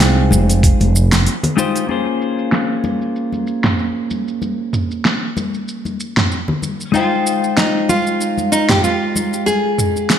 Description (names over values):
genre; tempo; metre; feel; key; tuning
sunset chillout; 95 BPM; 4/4; swing 55% on 16ths; Bb dorian; A4 = 439 Hz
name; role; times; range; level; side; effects
nylon-string guitar; melody; 0.0-1.2, 6.9-10.2 s; Eb4 to Ab4; -18 LUFS; equal; ping-pong delay
clean electric guitar; accompaniment; 0.0-10.2 s; Ab3 to G5; -20 LUFS; moving between left 6 dB and right 7 dB; auto-pan, ping-pong delay
woody fretless electric bass; bass; 0.0-1.3 s; F1 to C2; -13 LUFS; equal; none
deep house drum kit; drums; 0.0-10.2 s; hi-hat, shaker, snare drum, toms; -18 LUFS; right 1 dB; low-pass filter on snare, low-pass filter on perc, low-pass filter on hats, low-pass filter on toms, gated reverb
congas; percussion; 0.3-9.6 s; none; -24 LUFS; left 3 dB; none
electronic kick drum; drums; 0.6-0.8 s; none; -13 LUFS; equal; none
room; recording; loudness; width
moderate plate reverb, RT60 2.5 s; bright 1980s-style digital production; -14 LUFS; side -9 dB against mid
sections
0.0-1.9 A section; 1.9-10.2 B section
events
break 1.3-1.9; filter sweep on drum 1.9-10.2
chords
0.0 Fm7; 1.9 Bbm9; 6.9 Fm7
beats
0.00 0.63 1.26 | 1.89 2.52 3.16 3.79 | 4.42 5.05 5.68 6.32 | 6.95 7.58 8.21 8.84 | 9.47 10.10